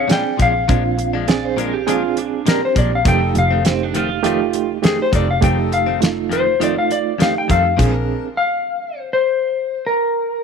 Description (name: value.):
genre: straight-eighth soul blues.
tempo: 101 BPM.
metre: 4/4.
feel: swing 54% on 16ths.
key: Bb major.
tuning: A4 = 441 Hz.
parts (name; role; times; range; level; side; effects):
clean lap steel guitar; melody; 0.0-10.4 s; Ab4 to G5; -19 LUFS; left 3 dB; none.
overdriven reed electric piano; accompaniment; 0.0-8.3 s; A3 to Ab4; -21 LUFS; right 13 dB; medium tremolo.
dark double bass; bass; 0.0-8.0 s; F1 to F2; -20 LUFS; equal; none.
direct-recorded clean electric guitar; stabs; 0.1-8.0 s; F2 to D4; -26 LUFS; left 10 dB; none.
damped 70s drum kit; drums; 0.1-7.9 s; crash cymbal, hi-hat, kick drum, snare drum; -19 LUFS; equal; none.
electric guitar through a small old amp; second line; 1.3-4.7 s; C4 to D5; -24 LUFS; right 11 dB; wide subtle chorus.
clear horn section; sustained chords; 3.0-8.3 s; D4 to Bb4; -32 LUFS; left 11 dB; none.
room: light reverb, small room ambience.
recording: 1960s-style stereo with parts hard left and right.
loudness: -15 LUFS.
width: side -6 dB against mid.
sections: 0.0-10.4 A section.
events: stop 7.8-10.4.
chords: 0.0 Bb7; 3.1 F7; 7.8 Bb7.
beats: 0.09 | 0.69 1.28 1.87 2.46 | 3.05 3.65 4.24 4.83 | 5.42 6.01 6.60 7.20 | 7.79 8.38 8.97 9.56 | 10.15.